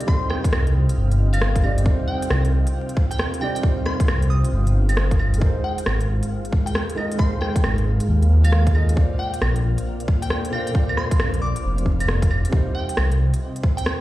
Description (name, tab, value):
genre	future garage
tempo	135 BPM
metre	4/4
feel	swing 64% on 16ths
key	C minor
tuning	A4 = 440 Hz
part	felt-muted upright piano	accompaniment	0.0-14.0 s	Bb2 to F5	-30 LUFS	right 2 dB	sidechain pumping, low-pass filter, tape echo
part	dark analog pad	sustained chords	0.0-14.0 s	Ab3 to G5	-32 LUFS	equal	chorus, sidechain pumping
part	organic electronic drum kit	drums	0.0-14.0 s	claves, hi-hat, rim click	-27 LUFS	equal	overdrive
part	wind-like tuned noise texture	texture	0.0-14.0 s	C4 to F5	-39 LUFS	left 1 dB	built-in reverb
part	glassy wavetable pluck	melody	0.1-13.9 s	F5 to Eb6	-32 LUFS	equal	chorus, tape echo
part	electronic kick drum	drums	0.1-13.7 s	none	-20 LUFS	equal	overdrive
part	swelling detuned saw bass	bass	0.5-13.3 s	F1 to Eb2	-18 LUFS	equal	tube saturation, sidechain pumping
room	little or no reverb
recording	played on a big sound system in a bare room, large studio reverb, vinyl crackle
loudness	-18 LUFS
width	side -16 dB against mid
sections	0.0-14.0 A section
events	filter sweep on felt piano 0.0-14.0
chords	0.0 Cm; 5.4 Abadd9; 9.0 Bbadd9; 12.5 Cm